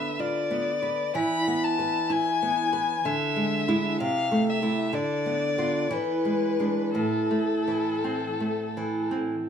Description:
romantic duo for violin and classical guitar; 55-64 BPM; 3/4; rubato; A minor; A4 = 440 Hz
rich violin; melody; 0.0-9.1 s; A4 to B5; -28 LUFS; left 6 dB; plate reverb, tape echo
nylon-string guitar; accompaniment; 0.0-9.5 s; A2 to B4; -26 LUFS; right 2 dB
light reverb; small room ambience; -24 LUFS; side -8 dB against mid
0.0-9.5 A section
0.0 Bdim/D; 1.2 E; 3.0 E7/D; 4.0 Am/C; 4.9 Bdim/D; 5.9 E7; 7.0 Am

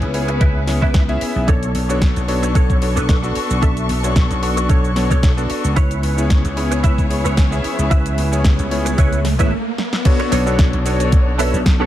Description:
nu-disco, nu disco; 112 BPM; 4/4; swing 54% on 16ths; B dorian; A4 = 440 Hz
bright electric grand piano; accompaniment; 0.0-11.9 s; B3 to C#6; -23 LUFS; left 1 dB; sidechain pumping, ping-pong delay
dark chamber string section; sustained chords; 0.0-11.9 s; B3 to C#6; -26 LUFS; left 3 dB; sidechain pumping
vintage slap bass; bass; 0.0-11.9 s; G#1 to C#2; -20 LUFS; equal
house drum kit; drums; 0.0-11.8 s; crash cymbal, hi-hat, shaker, snare drum; -26 LUFS; equal
direct-recorded clean electric guitar; riff; 0.3-11.9 s; D4 to E5; -25 LUFS; right 3 dB; ensemble chorus, ping-pong delay
electronic kick drum; drums; 0.4-11.8 s; -15 LUFS; equal
riser; sound effects; 7.7-10.1 s; -27 LUFS; right 1 dB
digital ambience; -14 LUFS; side -13 dB against mid
0.0-10.1 A section; 10.1-11.9 B section
riser 7.7-10.1; stop 9.5-10.1; drum fill 9.8; drop 10.1-11.9
0.0 C#m7; 1.5 Bm9; 5.8 C#m7; 10.1 Bm9

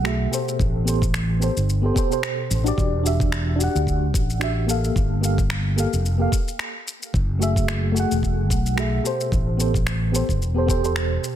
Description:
sunset chillout; 110 BPM; 4/4; swing 55% on 16ths; A4 = 442 Hz
mellow FM electric piano; accompaniment; 0.0-11.4 s; B2 to F#5; -24 LUFS; moving between left 3 dB and right 6 dB; chorus, tremolo, auto-pan, digital delay
fretless electric bass; bass; 0.0-11.2 s; E1 to D2; -22 LUFS; equal; wide subtle chorus
electronic finger snaps and shaker; drums; 0.1-11.4 s; -30 LUFS; left 1 dB; soft clipping on snare
electronic kick drum; drums; 0.6-10.8 s; -23 LUFS; equal
light reverb; dense, heavily limited modern master; -19 LUFS; side -10 dB against mid
0.0-11.4 A section
0.3 Am9; 2.8 Em9; 5.0 Gm9; 7.1 F#m9; 9.1 Am9

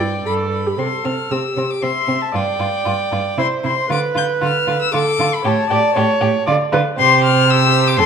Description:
quick classical-period movement for string quartet; 116 BPM; 3/4; rubato; C major; A4 = 440 Hz
rich violin; melody; 0.0-8.1 s; G5 to G6; -19 LUFS; left 8 dB
dark violin; second line; 0.0-8.1 s; C4 to D5; -23 LUFS; left 2 dB
warm viola; accompaniment; 0.0-8.1 s; G4 to E5; -19 LUFS; right 4 dB
rich cello; bass; 0.0-8.1 s; F2 to D3; -21 LUFS; right 4 dB
moderate recital hall reverb, RT60 1.5 s; minimal, uncompressed stereo recording; -14 LUFS; side -7 dB against mid
0.8-8.1 A section
0.3 G; 0.8 C; 2.3 G5; 3.4 N.C.; 3.9 Dm; 5.4 A7; 6.5 N.C.; 7.0 C5

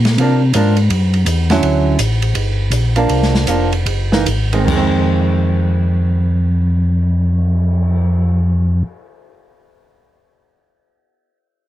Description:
soul jazz organ trio; 142-167 BPM; 4/4; swing 64% on 8ths; F dorian; A4 = 441 Hz
mellow tonewheel organ; bass; 0.0-8.8 s; F1 to C3; -14 LUFS; equal; chorus vibrato, slow rotary speaker
open jazz drum kit; drums; 0.0-8.0 s; crash cymbal, cymbal swell, hi-hat, kick drum, ride cymbal, snare drum; -22 LUFS; equal
archtop guitar, miked and amplified; accompaniment; 0.2-9.4 s; D3 to E4; -18 LUFS; right 3 dB
little or no reverb; heavily compressed radio sound; -13 LUFS; side -13 dB against mid
0.0-4.7 A section; 4.7-8.1 B section
slowing down 1.6-4.7
0.2 C9sus4; 0.9 Gb5; 1.6 Dmaj9; 2.3 Gm7; 3.1 C9sus4; 3.9 Gb13; 4.7 Fm7

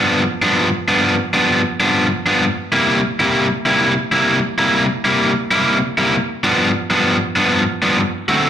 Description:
blues; 130 BPM; 4/4; swing 64% on 8ths; G mixolydian; A4 = 440 Hz
cranked stack guitar; solo; 0.0-8.5 s; G2 to F#4; -14 LUFS; equal; overdrive, slapback echo, analog delay
light reverb; live gig heard through the venue's PA, club reverb; -14 LUFS; side -9 dB against mid
0.0-8.5 A section
0.0 G7; 2.4 C7; 6.1 G7; 8.0 D7

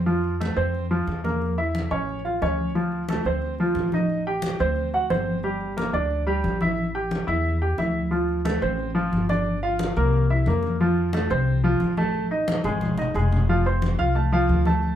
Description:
latin, salsa; 179 BPM; 4/4; straight; D minor; A4 = 440 Hz
upright bass; bass; 0.0-15.0 s; F1 to F2; -26 LUFS; left 1 dB
clear grand piano; accompaniment; 0.1-14.9 s; F3 to F6; -24 LUFS; right 1 dB
congas; percussion; 0.1-15.0 s; -28 LUFS; left 1 dB
moderate studio reverb, RT60 0.6 s; band playing live in one room; -21 LUFS; side -10 dB against mid
0.0-2.7 A section; 2.7-13.5 A section; 13.5-15.0 B section
drum fill 12.5-13.5
0.1 F; 1.4 A; 2.1 Aaug; 2.7 Dm7; 4.1 Am7b5; 4.8 D7; 5.4 Gmadd9; 6.8 A5; 8.1 Dm7; 9.5 Gm7; 10.1 C7; 10.8 F; 12.1 G#5; 13.5 F

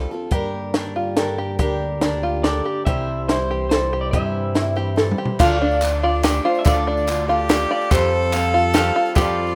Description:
indie folk with a building arrangement; 143 BPM; 3/4; straight; D minor; A4 = 439 Hz
fingerpicked plugged-in steel-string acoustic guitar; accompaniment; 0.0-5.4 s; F2 to A4; -36 LUFS; equal
picked steel-string acoustic guitar; accompaniment; 0.0-9.6 s; C3 to C5; -29 LUFS; equal
chorused synth bass; bass; 0.0-9.6 s; C2 to G2; -27 LUFS; equal
open-back banjo; arpeggios; 0.3-9.4 s; D4 to A4; -25 LUFS; equal
compact cocktail drum kit; drums; 0.3-9.3 s; crash cymbal, hi-hat, kick drum, ride cymbal, snare drum, toms; -23 LUFS; equal
electric guitar through a small old amp; melody; 2.4-9.5 s; C5 to F5; -27 LUFS; equal; harmonic tremolo
rich cello; second line; 5.4-9.6 s; D4 to A4; -28 LUFS; equal
group handclap; percussion; 5.4-9.3 s; -34 LUFS; equal
tambourine; percussion; 5.4-9.5 s; -41 LUFS; equal
light reverb, small room ambience; rough home demo mix; -20 LUFS; mono
0.0-5.4 A section; 5.4-9.6 B section
drum fill 5.0-5.4
0.3 Gm; 2.9 C; 5.4 Dm; 7.9 Fadd9

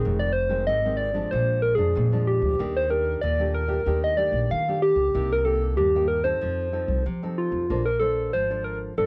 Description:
samba and choro; 94 BPM; 4/4; straight; Bb major; A4 = 440 Hz
soft struck synth lead; melody; 0.0-9.1 s; F4 to F5; -26 LUFS; equal; chorus
nylon-string guitar; accompaniment; 0.0-9.1 s; F2 to C5; -34 LUFS; equal
upright bass; bass; 0.1-9.1 s; F1 to F3; -29 LUFS; equal
little or no reverb; worn, warbling old tape, cassette tape, warbly pitch drift; -24 LUFS; mono
0.0-9.1 A section
0.0 Fm7; 1.3 Bb7; 2.6 Ebmaj7#11; 5.1 Cm7; 6.4 F7; 7.7 Bbmaj9

